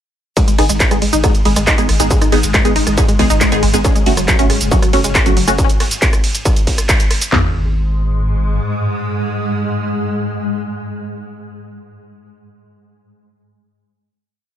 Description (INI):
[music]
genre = driving peak-time techno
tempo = 138 BPM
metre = 4/4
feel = straight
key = G# minor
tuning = A4 = 441 Hz
[part]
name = wide unison pluck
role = riff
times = 0.4-7.5 s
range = F#3 to D#4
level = -19 LUFS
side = equal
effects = overdrive, sidechain pumping, ping-pong delay
[part]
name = swarming drone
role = drone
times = 1.1-11.6 s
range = G#2 to G#3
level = -23 LUFS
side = left 1 dB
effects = built-in reverb, sidechain pumping
[part]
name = punchy analog drum machine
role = drums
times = 0.4-7.3 s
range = handclaps, hi-hat, ride cymbal, rim click, shaker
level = -18 LUFS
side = right 1 dB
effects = none
[part]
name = techno drum kit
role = drums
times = 0.4-7.4 s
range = handclaps, kick drum, toms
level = -14 LUFS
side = equal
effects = distortion
[part]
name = filtered dub chord stab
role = stabs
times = 0.6-11.6 s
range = A3 to G#4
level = -20 LUFS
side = equal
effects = phaser, wide subtle chorus, sidechain pumping, digital delay
[part]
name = saturated sub bass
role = bass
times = 0.6-8.6 s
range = F#1 to G#1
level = -18 LUFS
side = equal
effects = overdrive, sidechain pumping, low-pass filter
[sound]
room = little or no reverb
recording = none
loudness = -12 LUFS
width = side -10 dB against mid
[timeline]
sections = 0.4-7.3 drop; 7.3-10.8 final chord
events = drop 0.4-7.3; band accent 6.9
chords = 0.4 G#m; 3.8 F#5; 7.3 G#m